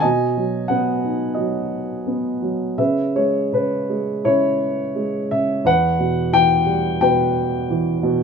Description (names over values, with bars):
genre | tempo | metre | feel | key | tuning
classical, lyrical solo piano | 81-91 BPM | 4/4 | rubato | C# minor | A4 = 439 Hz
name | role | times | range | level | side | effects
dark grand piano | solo | 0.0-8.2 s | E2 to G#5 | -17 LUFS | equal | none
room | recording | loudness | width
light reverb | minimal, uncompressed stereo recording | -17 LUFS | side -6 dB against mid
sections
0.0-8.2 A section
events
none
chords
0.0 B; 2.8 C#m7; 5.7 Emadd9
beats
| 0.03 0.70 1.37 2.07 | 2.79 3.53 4.25 4.96 | 5.65 6.33 7.02 7.70